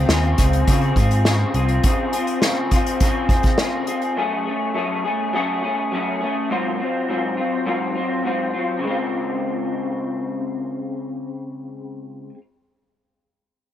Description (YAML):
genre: indie pop, bedroom pop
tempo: 103 BPM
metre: 4/4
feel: straight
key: Db major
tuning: A4 = 439 Hz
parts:
  - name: electric guitar through a small old amp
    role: accompaniment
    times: 0.0-12.4 s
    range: Ab2 to Ab4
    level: -22 LUFS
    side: left 2 dB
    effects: ensemble chorus, warbly pitch drift
  - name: picked electric bass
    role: bass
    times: 0.0-1.8 s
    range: C2 to Db3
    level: -18 LUFS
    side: equal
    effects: none
  - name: unplugged drum kit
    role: drums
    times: 0.1-4.2 s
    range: hi-hat, kick drum, snare drum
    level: -20 LUFS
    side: equal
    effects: none
room: light reverb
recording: none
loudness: -19 LUFS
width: side -11 dB against mid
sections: 0.0-8.8 A section; 8.8-11.2 B section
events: none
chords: 0.0 Dbmaj7; 4.2 Gbmadd9; 6.5 Ab6; 8.8 Dbmaj7